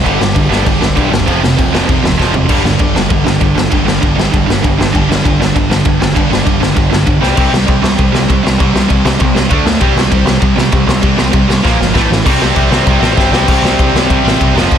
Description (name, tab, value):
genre	punk rock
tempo	197 BPM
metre	4/4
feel	straight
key	unclear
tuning	A4 = 440 Hz
part	distorted electric guitar	riff	0.0-14.8 s	F2 to D4	-18 LUFS	equal	overdrive
part	raw garage guitar	riff	0.0-14.8 s	F2 to D4	-18 LUFS	left 14 dB	overdrive
part	tight distorted guitar	riff	0.0-14.8 s	F2 to D4	-15 LUFS	right 9 dB	distortion
part	growling picked electric bass	bass	0.0-14.8 s	F1 to D2	-17 LUFS	equal	overdrive
part	raw garage drum kit	drums	0.1-14.8 s	crash cymbal, kick drum, ride cymbal, snare drum, toms	-14 LUFS	left 1 dB	none
room	little or no reverb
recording	dense, heavily limited modern master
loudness	-9 LUFS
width	side -9 dB against mid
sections	0.0-2.5 A section; 2.5-12.3 B section; 12.3-13.5 C section; 13.5-14.8 D section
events	drum fill 2.2-2.5, 7.2, 11.6-12.3, 13.2-13.5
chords	0.1 G5; 1.3 F5; 2.5 G5; 7.2 C5; 9.5 D5; 9.8 C5; 11.6 Bb5; 11.9 A5; 12.3 C5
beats	| 0.05 0.36 0.66 0.97 | 1.27 1.58 1.88 2.19 | 2.49 2.80 3.10 3.41 | 3.71 4.02 4.33 4.63 | 4.94 5.24 5.55 5.85 | 6.16 6.46 6.77 7.07 | 7.38 7.68 7.99 8.29 | 8.60 8.90 9.20 9.51 | 9.81 10.12 10.42 10.73 | 11.03 11.34 11.64 11.95 | 12.25 12.56 12.87 13.17 | 13.48 13.78 14.09 14.39 | 14.70